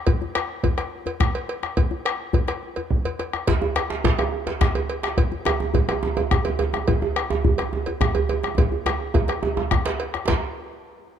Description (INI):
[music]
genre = west african traditional, West African drum ensemble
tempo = 141 BPM (dotted quarters)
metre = 12/8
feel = straight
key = none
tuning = none
[part]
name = bombo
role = percussion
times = 0.1-10.4 s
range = none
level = -24 LUFS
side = equal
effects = none
[part]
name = cowbell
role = percussion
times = 0.1-10.4 s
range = none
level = -31 LUFS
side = right 2 dB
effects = none
[part]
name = djembe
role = percussion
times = 0.1-10.4 s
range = none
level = -26 LUFS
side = left 6 dB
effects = none
[part]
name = djembe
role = percussion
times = 3.5-10.4 s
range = none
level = -24 LUFS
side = right 5 dB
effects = none
[sound]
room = light reverb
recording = dark, warm production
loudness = -21 LUFS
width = side -9 dB against mid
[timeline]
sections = 0.0-10.3 A section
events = drum fill 2.9-3.5, 8.6-10.3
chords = none